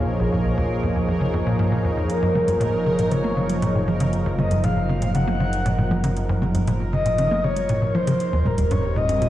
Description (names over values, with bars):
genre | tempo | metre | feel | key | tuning
ambient, sequencer-driven space music | 118 BPM | 4/4 | straight | unclear | A4 = 440 Hz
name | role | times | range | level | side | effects
sweeping resonant pad | sustained chords | 0.0-9.3 s | F3 to Eb5 | -25 LUFS | right 1 dB | chorus
fat analog bass | bass | 0.0-9.3 s | Eb1 to Bb1 | -27 LUFS | equal | none
bubbling stepped-filter texture | texture | 0.0-9.3 s | Bb4 | -38 LUFS | right 2 dB | chorus, built-in reverb
tight sequencer bass | riff | 0.2-9.3 s | Bb1 to Bb3 | -23 LUFS | equal | analog chorus, tape echo
breathy flute-like synth lead | melody | 2.1-9.3 s | Bb4 to Gb5 | -25 LUFS | left 1 dB | wide subtle chorus, tape echo
electronic hi-hat and congas | percussion | 2.1-9.3 s | none | -32 LUFS | right 2 dB | tape echo
room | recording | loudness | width
wet plate reverb, RT60 3.1 s | played on a big sound system in a bare room, cassette tape, large studio reverb | -19 LUFS | side -13 dB against mid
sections
0.0-9.3 A section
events
fade-in on synth texture 0.0-9.3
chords
0.0 Bbm7; 2.1 Gbmaj7; 8.2 Eb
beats
| 0.06 0.57 1.08 1.59 | 2.10 2.61 3.12 3.62 | 4.13 4.64 5.15 5.66 | 6.17 6.67 7.18 7.69 | 8.20 8.71 9.22